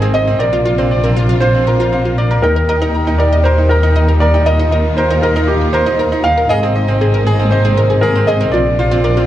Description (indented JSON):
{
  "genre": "piano and strings electronica",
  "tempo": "118 BPM",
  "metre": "4/4",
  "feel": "straight",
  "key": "Eb major",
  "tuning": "A4 = 444 Hz",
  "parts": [
    { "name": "felt-muted upright piano", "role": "melody", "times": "0.0-9.3 s", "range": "G4 to Ab5", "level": "-16 LUFS", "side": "right 1 dB", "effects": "none" },
    { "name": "warm symphonic string section", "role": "sustained chords", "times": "0.0-9.3 s", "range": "Bb2 to G4", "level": "-22 LUFS", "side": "equal", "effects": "none" },
    { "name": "wide unison pluck", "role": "arpeggios", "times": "0.0-9.2 s", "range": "C4 to G5", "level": "-22 LUFS", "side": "equal", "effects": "cassette tape, tape echo" },
    { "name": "bright baby grand piano", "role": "riff", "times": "0.0-9.3 s", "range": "C4 to Bb5", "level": "-20 LUFS", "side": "right 1 dB", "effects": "none" },
    { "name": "dark studio double bass section", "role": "bass", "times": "0.0-9.3 s", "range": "Ab1 to Eb2", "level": "-14 LUFS", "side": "equal", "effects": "none" }
  ],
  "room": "light reverb, small room ambience",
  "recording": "dark, warm production",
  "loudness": "-11 LUFS",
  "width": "side -12 dB against mid",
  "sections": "0.0-9.3 A section",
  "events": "none",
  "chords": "0.4 Bbadd9; 2.4 Eb; 6.5 Abadd9; 8.5 Bbadd9"
}